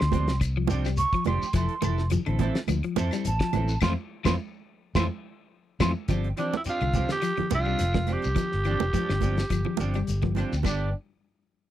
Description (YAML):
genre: afrobeat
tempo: 105 BPM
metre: 4/4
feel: swing 54% on 16ths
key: unclear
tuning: A4 = 440 Hz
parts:
  - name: mellow hollow jazz flute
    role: melody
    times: 0.0-5.9 s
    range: A5 to C#6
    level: -29 LUFS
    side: right 4 dB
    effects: none
  - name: electric guitar at the edge of break-up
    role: arpeggios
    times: 0.0-10.8 s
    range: G2 to A3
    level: -32 LUFS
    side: left 8 dB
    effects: spring reverb
  - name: fingered electric bass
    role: bass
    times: 0.0-10.9 s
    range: F1 to F2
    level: -27 LUFS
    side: left 1 dB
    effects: none
  - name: damped 70s drum kit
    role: drums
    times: 0.0-10.8 s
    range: crash cymbal, hi-hat, kick drum, snare drum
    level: -29 LUFS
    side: left 1 dB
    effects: none
  - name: clean electric guitar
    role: stabs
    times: 0.1-10.9 s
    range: E3 to A4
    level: -33 LUFS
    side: right 5 dB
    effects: analog chorus
  - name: congas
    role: percussion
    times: 0.1-10.8 s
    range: none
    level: -32 LUFS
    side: right 13 dB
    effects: none
  - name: shekere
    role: percussion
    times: 0.1-10.8 s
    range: none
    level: -37 LUFS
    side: left 3 dB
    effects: none
  - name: claves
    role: percussion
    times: 0.4-10.8 s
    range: none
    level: -40 LUFS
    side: left 17 dB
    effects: none
  - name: raspy tenor saxophone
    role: melody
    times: 6.4-10.9 s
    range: D4 to G4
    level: -30 LUFS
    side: right 2 dB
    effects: none
room: little or no reverb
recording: dry, close 1970s-style studio recording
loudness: -24 LUFS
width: side -12 dB against mid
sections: 0.0-6.1 A section; 6.1-10.7 B section; 10.7-11.7 C section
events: flute solo 0.0-6.1; band accent 3.8-6.1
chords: 0.0 G7sus4; 1.5 Fmaj7; 6.1 G7sus4; 10.7 G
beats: 0.41 0.98 | 1.55 2.12 2.69 3.25 | 3.82 4.39 4.96 5.53 | 6.10 6.67 7.24 7.80 | 8.38 8.95 9.52 10.09 | 10.66